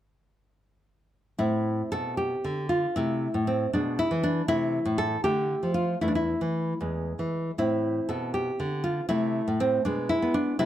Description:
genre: classical, baroque-style dance for nylon-string guitar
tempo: 78 BPM (dotted quarters)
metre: 6/8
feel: rubato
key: A minor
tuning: A4 = 441 Hz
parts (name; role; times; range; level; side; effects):
- nylon-string guitar; solo; 1.4-10.7 s; E2 to A4; -25 LUFS; equal; none
room: light reverb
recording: close, detailed microphones, faint mains hum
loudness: -25 LUFS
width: side -12 dB against mid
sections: 1.4-10.7 A section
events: none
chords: 1.4 Am; 3.0 Am/C; 3.7 E/B; 4.5 Am/C; 5.2 Dm; 6.0 Esus4; 6.8 E; 7.6 Am; 9.1 Am/C; 9.9 Bm6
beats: | 1.39 2.18 | 2.96 3.73 | 4.49 5.23 | 6.00 6.80 | 7.58 8.35 | 9.10 9.86 | 10.60

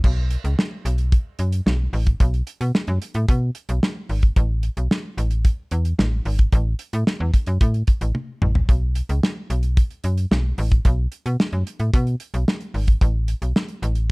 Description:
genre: early-eighties boogie funk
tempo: 111 BPM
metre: 4/4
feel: straight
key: unclear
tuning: A4 = 442 Hz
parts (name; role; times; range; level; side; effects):
- slap-like FM bass; bass; 0.0-14.1 s; G#1 to B2; -20 LUFS; equal; none
- damped 70s drum kit; drums; 0.0-14.1 s; crash cymbal, hi-hat, kick drum, snare drum, toms; -19 LUFS; equal; none
room: little or no reverb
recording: dark, warm production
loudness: -19 LUFS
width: side -30 dB against mid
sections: 0.0-14.1 A section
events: drum fill 8.1-8.7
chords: none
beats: | 0.04 0.58 1.12 1.66 | 2.20 2.74 3.28 3.82 | 4.36 4.91 5.45 5.99 | 6.53 7.07 7.61 8.15 | 8.69 9.23 9.77 10.31 | 10.85 11.39 11.93 12.47 | 13.01 13.55 14.09

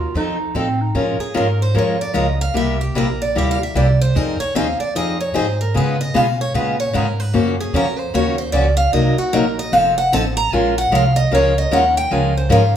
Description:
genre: acoustic string swing (jazz manouche)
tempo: 150 BPM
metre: 4/4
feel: swing 61% on 8ths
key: Bb minor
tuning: A4 = 439 Hz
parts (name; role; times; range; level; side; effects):
- growling clarinet; second line; 0.0-1.0 s; C4 to F4; -24 LUFS; right 4 dB; none
- upright bass; bass; 0.0-12.8 s; F1 to Db3; -20 LUFS; right 1 dB; none
- picked steel-string acoustic guitar; accompaniment; 0.2-12.6 s; C3 to Bb4; -19 LUFS; left 2 dB; none
- picked steel-string acoustic guitar; melody; 1.2-12.8 s; Gb4 to Bb5; -20 LUFS; right 1 dB; none
room: moderate large studio reverb, RT60 1.1 s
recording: band playing live in one room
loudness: -15 LUFS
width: side -9 dB against mid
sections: 1.0-12.8 A section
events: steel-string acoustic guitar solo 1.0-12.8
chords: 0.2 F7; 1.0 Bbm7; 2.6 C7; 4.1 Fm7; 5.7 Db7; 7.3 Gbmaj7; 8.9 Cm7b5; 9.7 F7; 10.5 Bbm7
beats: 0.16 0.56 | 0.95 1.35 1.75 2.15 | 2.55 2.95 3.35 3.75 | 4.15 4.55 4.95 5.34 | 5.74 6.14 6.54 6.94 | 7.34 7.74 8.13 8.53 | 8.93 9.33 9.73 10.12 | 10.52 10.92 11.32 11.71 | 12.11 12.51

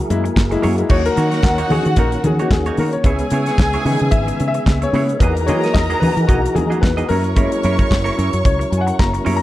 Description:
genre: disco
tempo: 111 BPM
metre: 4/4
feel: swing 56% on 16ths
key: unclear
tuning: A4 = 441 Hz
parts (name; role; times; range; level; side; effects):
- percussive tonewheel organ; sustained chords; 0.0-9.4 s; C#3 to E5; -24 LUFS; right 1 dB; chorus vibrato, fast rotary speaker
- clear concert grand piano; accompaniment; 0.1-9.4 s; D#3 to A#5; -22 LUFS; left 4 dB; none
- fingered electric bass; bass; 0.1-9.4 s; F#1 to E3; -20 LUFS; equal; none
- damped 70s drum kit; drums; 0.1-9.4 s; crash cymbal, handclaps, hi-hat, kick drum, snare drum; -18 LUFS; equal; none
- congas; percussion; 0.1-9.4 s; none; -26 LUFS; left 2 dB; none
- semi-hollow electric guitar; accompaniment; 0.2-9.4 s; A#3 to D#5; -26 LUFS; right 4 dB; none
- warm studio violin section; second line; 0.9-9.2 s; F#4 to C#6; -24 LUFS; equal; none
room: light reverb, studio reverb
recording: dark, warm production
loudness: -14 LUFS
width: side -15 dB against mid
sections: 0.9-9.4 A section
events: grand piano solo 0.9-9.4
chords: 0.0 F#9; 0.9 D#m7; 3.0 C#m7; 5.2 Emaj9#11; 7.1 F#7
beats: 0.36 | 0.90 1.44 1.97 2.51 | 3.05 3.59 4.13 4.67 | 5.20 5.74 6.28 6.83 | 7.37 7.91 8.45 8.99

